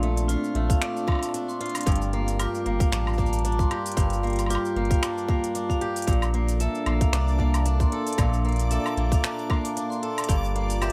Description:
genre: folktronica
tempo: 114 BPM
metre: 4/4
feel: swing 56% on 16ths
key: unclear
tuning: A4 = 440 Hz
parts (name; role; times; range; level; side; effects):
- vibraphone with hard mallets; second line; 0.0-10.9 s; F4 to C6; -35 LUFS; equal; digital delay
- warbly tape-like pad; sustained chords; 0.0-10.9 s; G3 to Bb4; -35 LUFS; equal; chorus, built-in reverb
- picked swing-style acoustic guitar; arpeggios; 0.0-10.9 s; G2 to A4; -32 LUFS; equal; digital delay
- warm sub bass; bass; 0.0-10.9 s; G1 to C2; -27 LUFS; equal; none
- organic electronic drum kit; drums; 0.0-10.9 s; finger snaps, hi-hat, shaker, woodblock; -35 LUFS; equal; none
- electronic kick drum; drums; 0.7-10.4 s; none; -26 LUFS; equal; none
- backwards swelling texture; texture; 7.2-10.9 s; D5 to D6; -42 LUFS; equal; built-in reverb
room: light reverb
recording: none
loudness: -25 LUFS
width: mono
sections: 0.0-10.9 A section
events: none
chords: 0.0 Bbmaj7; 1.9 Gm7; 6.1 Bbmaj7; 10.3 Gm7

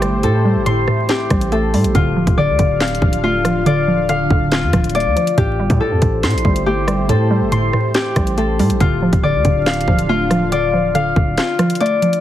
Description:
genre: hip hop, drill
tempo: 140 BPM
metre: 4/4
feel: half-time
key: D minor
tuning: A4 = 440 Hz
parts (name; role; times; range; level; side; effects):
- hollow square pluck; accompaniment; 0.0-12.2 s; A2 to A3; -19 LUFS; right 2 dB; chorus
- dark analog pad; sustained chords; 0.0-12.2 s; D3 to F5; -25 LUFS; right 2 dB; chorus
- Celtic harp; arpeggios; 0.0-12.2 s; F4 to C6; -18 LUFS; left 4 dB; digital delay
- distorted 808-style bass; bass; 0.0-11.4 s; D1 to A2; -21 LUFS; equal; distortion
- drill drum kit; drums; 0.0-12.2 s; handclaps, hi-hat, kick drum, rim click, snare drum; -19 LUFS; equal; none
room: light reverb, digital ambience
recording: heavily compressed radio sound, multiband compression, vinyl crackle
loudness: -13 LUFS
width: side -12 dB against mid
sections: 0.0-12.2 A section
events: kick muted 11.4-12.2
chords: 0.0 Am7; 1.9 Dm; 5.4 Am7; 8.8 Dm

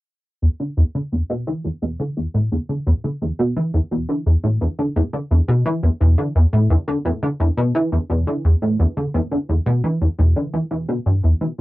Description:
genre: ambient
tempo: 86 BPM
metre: 4/4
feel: straight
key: E minor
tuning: A4 = 440 Hz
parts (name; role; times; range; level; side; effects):
- plucky analog bass; solo; 0.4-11.6 s; E2 to E3; -17 LUFS; equal; ensemble chorus, cassette tape, analog delay
room: wet booth ambience, RT60 0.2 s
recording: home recording on cassette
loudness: -17 LUFS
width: side -18 dB against mid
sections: 0.4-11.6 A section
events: none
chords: none

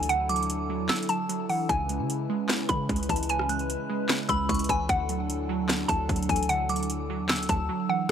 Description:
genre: hip hop, trap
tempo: 150 BPM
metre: 4/4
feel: half-time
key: unclear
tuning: A4 = 440 Hz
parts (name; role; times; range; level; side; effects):
- hollow square pluck; melody; 0.0-8.1 s; F#5 to B5; -30 LUFS; equal; chorus
- glassy wavetable pluck; accompaniment; 0.0-8.1 s; C#3 to G#3; -32 LUFS; right 5 dB; chorus
- hollow soft pad; sustained chords; 0.0-8.1 s; F#3 to B4; -34 LUFS; left 3 dB; chorus
- hard-hitting 808-style bass; bass; 0.0-8.1 s; C#2 to C#3; -33 LUFS; equal; none
- trap drum kit; drums; 0.0-8.1 s; crash cymbal, handclaps, hi-hat, kick drum, rim click, snare drum; -29 LUFS; equal; overdrive
- glassy synth bell; second line; 0.3-8.1 s; B5 to F#6; -34 LUFS; right 2 dB; chorus, phaser, ping-pong delay
room: light reverb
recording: none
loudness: -25 LUFS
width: side -8 dB against mid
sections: 0.0-8.1 A section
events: kick muted 0.9-1.7; drums muted 7.7-8.1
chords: 0.0 Dadd9; 1.7 C#m7; 4.9 Dadd9

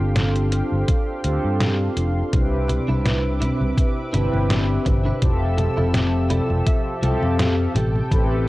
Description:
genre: vaporwave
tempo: 83 BPM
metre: 4/4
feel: swing 55% on 16ths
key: unclear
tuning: A4 = 439 Hz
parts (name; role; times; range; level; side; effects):
- mellow synth brass; accompaniment; 0.0-8.5 s; F3 to E5; -24 LUFS; equal; analog chorus, cassette tape, tape echo
- lush unison pad; sustained chords; 0.0-8.5 s; G4 to E6; -33 LUFS; equal; chorus, vintage 12-bit sampler grit
- fingered electric bass; bass; 0.0-8.5 s; F1 to G2; -22 LUFS; equal; none
- detuned 8-bit digital drum machine; drums; 0.2-8.3 s; congas, hi-hat, snare drum; -25 LUFS; equal; none
- electronic kick drum; drums; 0.9-8.3 s; none; -20 LUFS; equal; none
- direct-recorded clean electric guitar; riff; 2.7-8.3 s; C4 to G5; -31 LUFS; right 2 dB; ensemble chorus, vintage 12-bit sampler grit, tape echo
room: little or no reverb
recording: dry, gritty hardware recording, cassette tape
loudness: -18 LUFS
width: side -18 dB against mid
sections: 0.0-8.5 A section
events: clean electric guitar fill 5.9-8.1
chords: 0.0 G7sus4; 2.3 Cmaj9; 5.2 Fmaj7; 7.8 Am7

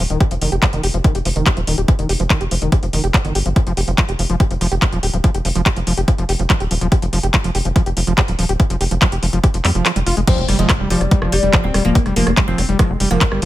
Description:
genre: psychedelic trance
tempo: 143 BPM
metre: 4/4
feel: straight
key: unclear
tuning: A4 = 440 Hz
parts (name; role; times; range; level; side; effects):
- overdriven acid bass; riff; 0.0-13.5 s; Eb3 to G4; -22 LUFS; moving between left 3 dB and right 4 dB; distortion, auto-pan, sidechain pumping, dub echo
- tight sequencer bass; bass; 0.0-13.5 s; Eb1 to F2; -19 LUFS; equal; none
- techno drum kit; drums; 0.0-13.5 s; crash cymbal, handclaps, hi-hat, rim click; -21 LUFS; left 1 dB; none
- electronic kick drum; drums; 0.2-13.3 s; none; -15 LUFS; equal; none
- oud; melody; 10.3-13.5 s; G3 to C4; -21 LUFS; left 3 dB; phaser, sidechain pumping, dub echo
- impact; sound effects; 10.3-12.0 s; none; -29 LUFS; equal; none
room: little or no reverb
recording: none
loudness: -14 LUFS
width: side -15 dB against mid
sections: 0.0-10.3 A section; 10.3-13.5 B section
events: filter sweep on acid bass 0.0-10.3; kick drops out 9.9-10.3; drop 10.3-13.5; impact 10.3-12.0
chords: 0.0 Ebadd9

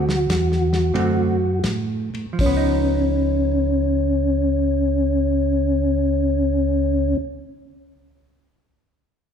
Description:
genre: soul jazz organ trio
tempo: 77-97 BPM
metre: 4/4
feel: swing 68% on 8ths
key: Db mixolydian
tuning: A4 = 440 Hz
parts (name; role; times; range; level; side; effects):
- percussive tonewheel organ; melody; 0.0-7.2 s; Db4 to F#4; -21 LUFS; left 2 dB; slow rotary speaker, chorus vibrato
- hollow-body jazz guitar; accompaniment; 0.0-7.4 s; D3 to F#4; -27 LUFS; right 4 dB; none
- mellow tonewheel organ; bass; 0.0-7.2 s; Db2 to A2; -22 LUFS; right 1 dB; slow rotary speaker
- warm soul drum kit; drums; 0.1-2.6 s; hi-hat, kick drum, ride cymbal, snare drum; -26 LUFS; equal; none
room: wet recital hall reverb, RT60 1.6 s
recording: recorded in a church or concert hall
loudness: -18 LUFS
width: side -7 dB against mid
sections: 0.0-2.4 A section; 2.4-8.6 B section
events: slowing down 0.0-2.4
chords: 0.0 D7; 2.4 Db9

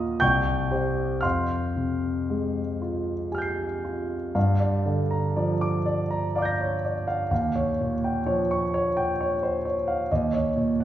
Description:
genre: classical, impressionist solo piano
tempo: 55-66 BPM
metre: 3/4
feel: rubato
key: unclear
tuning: A4 = 441 Hz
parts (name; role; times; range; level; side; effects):
- warm concert grand piano; solo; 0.0-10.8 s; C2 to C7; -23 LUFS; equal; none
room: wet recital hall reverb, RT60 1.5 s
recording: heard from further back in the room, nothing above 7.6 kHz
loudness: -23 LUFS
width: side -12 dB against mid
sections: 0.0-4.4 A section; 4.4-10.8 B section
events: none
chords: 0.2 C5; 1.2 Fmadd9; 4.4 Gm7; 7.3 Eb9; 10.1 Eb7(no3)

